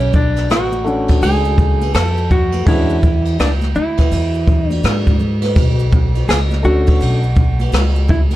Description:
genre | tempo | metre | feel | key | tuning
hip hop, jazz-hop | 83 BPM | 4/4 | swing 63% on 16ths | B dorian | A4 = 440 Hz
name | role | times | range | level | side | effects
hollow-body jazz guitar | melody | 0.0-8.2 s | C#4 to A4 | -20 LUFS | right 1 dB | none
upright bass | bass | 0.0-8.4 s | A1 to G#2 | -17 LUFS | equal | transformer saturation
maracas and congas | percussion | 0.0-8.4 s | none | -30 LUFS | right 2 dB | none
jazz brush drum kit | drums | 0.1-8.4 s | hi-hat, kick drum, ride cymbal, rim click | -16 LUFS | equal | none
warm upright piano | accompaniment | 0.8-7.2 s | G#3 to F#4 | -20 LUFS | left 3 dB | none
room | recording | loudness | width
little or no reverb | none | -12 LUFS | side -15 dB against mid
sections
0.0-8.4 A section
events
none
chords
0.0 Bm9; 2.7 E13; 5.6 Bm9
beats
0.50 1.22 1.95 | 2.67 3.39 4.11 4.84 | 5.56 6.28 7.00 7.73

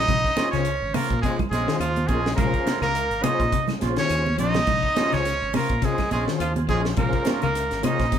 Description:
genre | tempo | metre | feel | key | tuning
afrobeat | 104 BPM | 4/4 | swing 56% on 16ths | Bb minor | A4 = 440 Hz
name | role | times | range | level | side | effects
bright trumpet | melody | 0.0-8.2 s | F4 to Eb5 | -25 LUFS | right 1 dB | none
raspy tenor saxophone | second line | 0.0-8.2 s | F3 to Eb4 | -31 LUFS | right 4 dB | none
fingered electric bass | bass | 0.0-8.1 s | Ab1 to Bb2 | -29 LUFS | equal | none
clean electric guitar | arpeggios | 0.1-8.2 s | C3 to F3 | -29 LUFS | left 10 dB | tremolo
tight funk drum kit | drums | 0.1-8.2 s | hi-hat, kick drum, snare drum | -28 LUFS | equal | none
claves | percussion | 0.1-8.0 s | none | -44 LUFS | left 4 dB | none
congas | percussion | 0.1-8.2 s | none | -29 LUFS | right 3 dB | none
tonewheel organ | accompaniment | 0.4-8.1 s | Db4 to C5 | -31 LUFS | left 3 dB | slow rotary speaker, chorus vibrato
electric guitar at the edge of break-up | stabs | 0.4-8.0 s | Db4 to C5 | -33 LUFS | right 9 dB | none
room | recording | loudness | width
moderate large studio reverb, RT60 1.1 s | band playing live in one room | -20 LUFS | side -9 dB against mid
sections
0.0-8.2 A section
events
none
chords
0.0 Bbm9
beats
| 0.08 0.66 1.23 1.80 | 2.38 2.95 3.53 4.10 | 4.68 5.25 5.83 6.40 | 6.98 7.55 8.13

